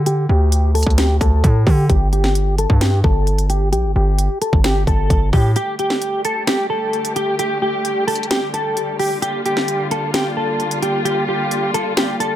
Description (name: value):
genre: hip hop, trap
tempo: 131 BPM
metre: 4/4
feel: half-time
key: unclear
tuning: A4 = 441 Hz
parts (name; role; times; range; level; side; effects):
- distorted 808-style bass; bass; 0.0-5.6 s; G1 to D3; -16 LUFS; equal; distortion
- clean electric guitar; melody; 0.1-12.4 s; G4 to A4; -20 LUFS; equal; analog chorus, low-pass filter
- garage drum kit; drums; 0.1-12.3 s; hi-hat, kick drum, snare drum; -19 LUFS; equal; none
- muted studio string section; sustained chords; 5.6-12.4 s; D3 to G4; -24 LUFS; left 1 dB; none
room: little or no reverb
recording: none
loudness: -15 LUFS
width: side -12 dB against mid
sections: 0.0-12.4 A section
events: filter sweep on clean electric guitar 0.0-5.6; break 5.6-12.4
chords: 0.0 Dsus4; 1.9 N.C.; 5.6 Dsus4; 9.2 Gm7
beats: | 0.06 0.52 0.98 1.44 | 1.90 2.35 2.81 3.27 | 3.73 4.19 4.64 5.10 | 5.56 6.02 6.48 6.93 | 7.39 7.85 8.31 8.77 | 9.22 9.68 10.14 10.60 | 11.06 11.52 11.97